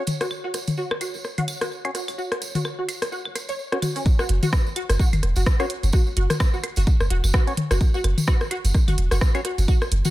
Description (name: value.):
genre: minimal techno.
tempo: 128 BPM.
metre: 4/4.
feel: swing 58% on 16ths.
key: unclear.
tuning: A4 = 437 Hz.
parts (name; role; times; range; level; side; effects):
percussive organ stab; stabs; 0.0-9.4 s; C#4 to C#5; -31 LUFS; left 2 dB; chorus, phaser, tape echo.
pulsing gated texture; texture; 0.0-4.1 s; C#5; -42 LUFS; equal; chorus, built-in reverb, sidechain pumping.
house drum kit; drums; 0.1-10.1 s; hi-hat, rim click; -31 LUFS; right 2 dB; none.
booming analog drum machine; percussion; 0.1-10.1 s; claves, rim click, toms; -27 LUFS; left 2 dB; tape echo.
tambourine; percussion; 0.1-10.1 s; none; -36 LUFS; right 3 dB; none.
resonant blip pluck; riff; 0.2-10.1 s; C#4 to C#5; -31 LUFS; equal; ensemble chorus, sidechain pumping, ping-pong delay.
punchy sub bass; bass; 0.2-10.0 s; E1 to F#1; -20 LUFS; equal; sidechain pumping, high-pass filter.
electronic kick drum; drums; 4.1-9.8 s; none; -19 LUFS; equal; none.
room: digital ambience.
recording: none.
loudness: -20 LUFS.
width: side -16 dB against mid.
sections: 0.0-4.1 A section; 4.1-10.1 B section.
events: drop 4.1-10.1.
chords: 0.0 F#5.